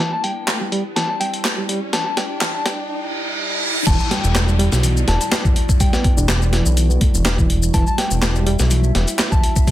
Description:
breakbeat, breaks; 124 BPM; 4/4; swing 53% on 16ths; E minor; A4 = 440 Hz
soft synth bell; melody; 0.0-9.5 s; G5 to A5; -26 LUFS; left 2 dB; chorus, old record sound, dub echo
dark analog pad; sustained chords; 0.0-9.7 s; G3 to E5; -29 LUFS; right 1 dB; chorus, phaser, sidechain pumping
mellow reed electric piano; riff; 0.0-9.7 s; E3 to D4; -25 LUFS; right 1 dB; fast tremolo, vintage 12-bit sampler grit
breakbeat sampler-style drum kit; drums; 0.0-9.7 s; crash cymbal, hi-hat, kick drum, snare drum; -19 LUFS; equal; low-pass filter on kick, low-pass filter on hats, low-pass filter on snare, low-pass filter on cymbals
riser, reverse cymbal and downlifter; sound effects; 0.2-7.7 s; -27 LUFS; right 1 dB
electronic handclaps and shaker; drums; 0.5-9.7 s; -24 LUFS; left 1 dB; overdrive
fat analog bass; bass; 3.9-9.1 s; E1 to B1; -17 LUFS; equal; tube saturation
light reverb; dense, heavily limited modern master, high-pass filter; -16 LUFS; side -13 dB against mid
0.0-3.9 A section; 3.9-9.7 B section
build-up 0.0-3.9; drum fill 0.0-2.9; filter sweep on reed electric piano 0.0-3.9; filter sweep on analog synth pad 0.0-3.9; filter sweep 0.0-3.9; riser 0.2-3.9; reverse cymbal 2.9-3.9; drop 3.9-9.7
0.0 Em7; 3.9 Em9

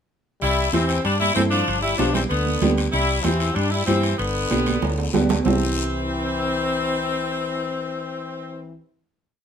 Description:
latin, cumbia; 191 BPM; 4/4; straight; C major; A4 = 441 Hz
edgy saxophone section; melody; 0.4-8.7 s; B3 to E4; -24 LUFS; left 1 dB
bright trombone; second line; 0.4-8.7 s; D3 to G3; -29 LUFS; left 4 dB
hollow-body short-scale fingered electric bass; bass; 0.4-8.8 s; G1 to G2; -25 LUFS; equal
congas; percussion; 0.4-5.5 s; -26 LUFS; right 6 dB
guiro; percussion; 0.4-5.5 s; -33 LUFS; left 6 dB
timbales; percussion; 0.4-5.5 s; -32 LUFS; right 6 dB
dark upright piano; accompaniment; 0.7-8.8 s; B3 to A4; -25 LUFS; equal
wet studio reverb, RT60 0.6 s; minimal, uncompressed stereo recording; -19 LUFS; side -8 dB against mid
0.4-5.5 A section; 5.5-8.0 final chord
drum fill 4.5-5.5
0.4 C; 1.7 G; 2.9 C; 4.2 G; 5.5 C

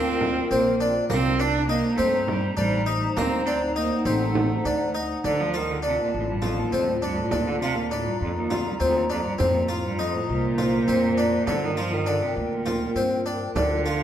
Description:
contemporary instrumental, chamber music in an uneven meter; 202 BPM (eighths); 7/8; straight; G minor; A4 = 440 Hz
rich cello; melody; 0.0-14.0 s; C2 to D4; -26 LUFS; right 3 dB
warbly tape-like pad; sustained chords; 0.0-14.0 s; Eb4 to Bb5; -29 LUFS; left 2 dB; chorus, built-in reverb
harpsichord; arpeggios; 0.0-14.0 s; Bb3 to F4; -26 LUFS; left 1 dB
upright bass; bass; 0.0-14.0 s; A1 to G2; -30 LUFS; equal
frame drum; percussion; 0.2-13.8 s; -34 LUFS; right 3 dB
wet recital hall reverb, RT60 1.8 s; -21 LUFS; side -10 dB against mid
0.0-5.2 A section; 5.2-14.0 B section
0.0 Gm7; 1.1 Cm7; 3.2 D7b9b13; 5.2 Dm; 7.3 Bb/D; 9.4 Fsus4; 11.5 Gm7

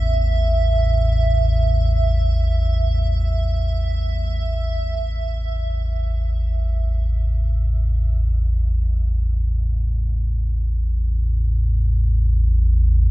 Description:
dark ambient drone; free time; A4 = 440 Hz
deep rumbling drone; drone; 0.0-13.1 s; A1 to E2; -18 LUFS; equal; built-in reverb, phaser, wide subtle chorus
icy glass pad; texture; 0.0-4.9 s; E5; -27 LUFS; right 5 dB; chorus, built-in reverb, shimmer reverb
light reverb; dark, warm production; -18 LUFS; side -17 dB against mid
0.0-4.8 A section; 4.8-13.1 B section
0.0 A5

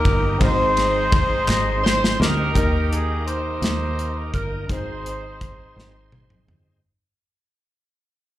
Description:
slow gospel; 56 BPM (dotted quarters); 6/8; straight; Ab major; A4 = 440 Hz
warm horn section; melody; 0.0-6.5 s; Eb4 to Eb5; -23 LUFS; equal; slapback echo
warm upright piano; accompaniment; 0.0-6.9 s; Ab2 to G5; -31 LUFS; left 4 dB; plate reverb, slapback echo
bright tonewheel organ; sustained chords; 0.0-6.8 s; Eb3 to C5; -32 LUFS; right 2 dB; fast rotary speaker, overdrive, chorus vibrato, plate reverb
fingered electric bass; bass; 0.1-6.8 s; G1 to Eb2; -24 LUFS; equal
modern studio drum kit; drums; 0.1-6.7 s; hi-hat, kick drum, ride cymbal, snare drum, toms; -22 LUFS; equal
group handclap; percussion; 1.5-1.8 s; -27 LUFS; equal
light reverb; live gig heard through the venue's PA, club reverb; -18 LUFS; side -14 dB against mid
0.0-2.6 A section; 2.6-6.8 B section
drum fill 1.5-2.6, 5.8-6.8; fade-out 2.6-6.8
0.4 Ab; 2.6 Eb; 4.7 Ab

